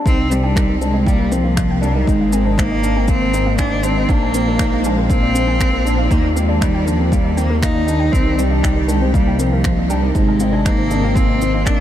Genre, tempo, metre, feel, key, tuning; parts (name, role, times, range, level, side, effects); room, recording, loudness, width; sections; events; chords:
piano and strings electronica; 119 BPM; 4/4; straight; C minor; A4 = 439 Hz
granular cloud pad; sustained chords; 1.8-11.8 s; C3 to F5; -25 LUFS; equal; built-in reverb, sidechain pumping
rich cello; melody; 0.1-11.8 s; F3 to Eb4; -20 LUFS; equal; analog delay
warbly dusty pluck; arpeggios; 0.1-11.8 s; Bb4 to Ab5; -30 LUFS; right 2 dB; chorus, sidechain pumping, analog delay
felt-muted upright piano; riff; 0.1-11.8 s; Bb3 to Eb4; -22 LUFS; left 2 dB; analog delay
dark detuned saw bass; bass; 0.1-11.8 s; Ab1 to Eb2; -19 LUFS; equal; sidechain pumping
electronic kick drum; drums; 0.1-11.8 s; -18 LUFS; equal; overdrive
shaker, finger snaps and woodblock; drums; 0.1-11.8 s; -30 LUFS; equal
light reverb, small room ambience; -14 LUFS; side -11 dB against mid
0.1-11.8 A section
drop 0.1-11.8
0.1 Cm7; 2.1 Ab6; 4.1 Bb7; 6.1 Ebmaj7; 8.1 Cm7; 10.1 Ab6